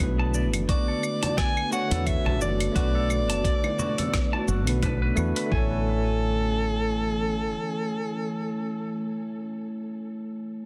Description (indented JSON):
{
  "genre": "sunset chillout",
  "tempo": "87 BPM",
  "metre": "4/4",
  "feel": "swing 56% on 16ths",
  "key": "A major",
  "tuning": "A4 = 440 Hz",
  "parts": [
    { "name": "bell-like tine electric piano", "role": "accompaniment", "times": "0.0-10.7 s", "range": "A3 to G#5", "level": "-33 LUFS", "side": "equal", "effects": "digital delay" },
    { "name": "ethereal airy pad", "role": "sustained chords", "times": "0.0-9.0 s", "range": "D3 to G#5", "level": "-37 LUFS", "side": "equal", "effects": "ensemble chorus, built-in reverb" },
    { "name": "woody fretless electric bass", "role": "bass", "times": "0.0-7.5 s", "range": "F#1 to E2", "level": "-29 LUFS", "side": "equal", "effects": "none" },
    { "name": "dusty soul sampler-style drum kit", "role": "drums", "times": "0.0-5.5 s", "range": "cabasa, claves, hi-hat, rim click", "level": "-34 LUFS", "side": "equal", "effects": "overdrive" },
    { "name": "electronic kick drum", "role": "drums", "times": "0.0-5.7 s", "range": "none", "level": "-29 LUFS", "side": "equal", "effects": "none" },
    { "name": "bongos and congas", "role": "percussion", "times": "0.0-5.3 s", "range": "none", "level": "-39 LUFS", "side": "equal", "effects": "none" },
    { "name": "semi-hollow electric guitar", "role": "arpeggios", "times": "0.2-5.8 s", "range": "F#4 to A5", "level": "-38 LUFS", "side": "equal", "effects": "digital delay" },
    { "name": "warm soprano saxophone", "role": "melody", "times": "0.7-9.0 s", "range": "A4 to G#5", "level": "-33 LUFS", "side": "equal", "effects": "tape echo" }
  ],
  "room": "light reverb",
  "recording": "dense, heavily limited modern master",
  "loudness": "-26 LUFS",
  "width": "mono",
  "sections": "0.0-5.5 A section; 5.5-8.3 B section",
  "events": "none",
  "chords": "0.0 Bm7; 5.5 Amaj7",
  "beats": "| 0.00 0.69 1.38 2.07 | 2.76 3.45 4.14 4.83 | 5.52 6.21 6.89 7.58"
}